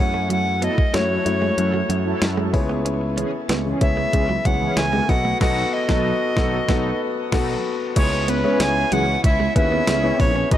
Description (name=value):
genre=1980s-style pop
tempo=94 BPM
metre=4/4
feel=straight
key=C# minor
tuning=A4 = 440 Hz
part: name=bright reedy alto recorder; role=melody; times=0.0-10.6 s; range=B4 to G#5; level=-24 LUFS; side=equal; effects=ping-pong delay, shimmer reverb
part: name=warm grand piano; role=accompaniment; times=0.0-10.6 s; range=A3 to F#5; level=-24 LUFS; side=left 4 dB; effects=shimmer reverb
part: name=picked electric bass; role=bass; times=0.0-10.6 s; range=A#1 to F#2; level=-25 LUFS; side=right 1 dB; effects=none
part: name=direct-recorded clean electric guitar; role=riff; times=0.1-10.5 s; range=F#3 to C#4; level=-29 LUFS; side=right 5 dB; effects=lush chorus, shimmer reverb
part: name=clean 12-bit digital drum machine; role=drums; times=0.3-10.6 s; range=crash cymbal, hi-hat, kick drum, snare drum, tambourine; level=-21 LUFS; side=equal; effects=overdrive
part: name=mellow synth brass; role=stabs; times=0.6-10.3 s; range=E3 to A4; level=-29 LUFS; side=right 1 dB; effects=chorus, shimmer reverb
part: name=warm studio violin section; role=second line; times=8.0-10.6 s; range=B3 to G#4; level=-32 LUFS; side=right 1 dB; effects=ping-pong delay, shimmer reverb
room=light reverb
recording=dark, warm production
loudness=-18 LUFS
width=side -11 dB against mid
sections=0.0-8.0 A section; 8.0-10.6 B section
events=band accent 5.4-8.0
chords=0.0 F#m7; 2.5 C#m7; 5.1 B7; 8.0 C#m7